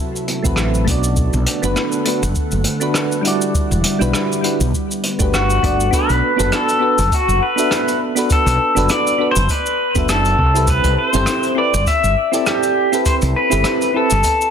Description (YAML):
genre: sunset chillout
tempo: 101 BPM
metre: 4/4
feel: swing 56% on 16ths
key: unclear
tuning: A4 = 441 Hz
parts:
  - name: lush unison pad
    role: sustained chords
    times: 0.0-5.9 s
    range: C3 to F#5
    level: -24 LUFS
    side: right 1 dB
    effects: chorus
  - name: soft brush drum kit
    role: drums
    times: 0.2-14.5 s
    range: cabasa, hi-hat, rim click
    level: -23 LUFS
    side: equal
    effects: none
  - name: soft electric-piano-like synth keys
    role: accompaniment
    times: 0.4-14.1 s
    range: G3 to E5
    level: -20 LUFS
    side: right 1 dB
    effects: chorus, auto-pan, digital delay
  - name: woody fretless electric bass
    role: bass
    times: 0.4-14.2 s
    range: E1 to C2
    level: -18 LUFS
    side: equal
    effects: none
  - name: electronic kick drum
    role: drums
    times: 0.4-14.4 s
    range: none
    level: -20 LUFS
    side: equal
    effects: none
  - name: pedal steel guitar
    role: melody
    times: 5.3-14.5 s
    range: F#4 to E5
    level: -17 LUFS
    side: left 2 dB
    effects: digital delay
room: light reverb, small room ambience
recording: dense, heavily limited modern master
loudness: -14 LUFS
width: side -7 dB against mid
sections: 0.0-5.9 A section; 5.9-14.5 B section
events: none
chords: 0.0 D13; 1.2 Bm7; 3.5 Em9; 4.7 Gmaj7; 5.9 Bm7; 10.4 Am9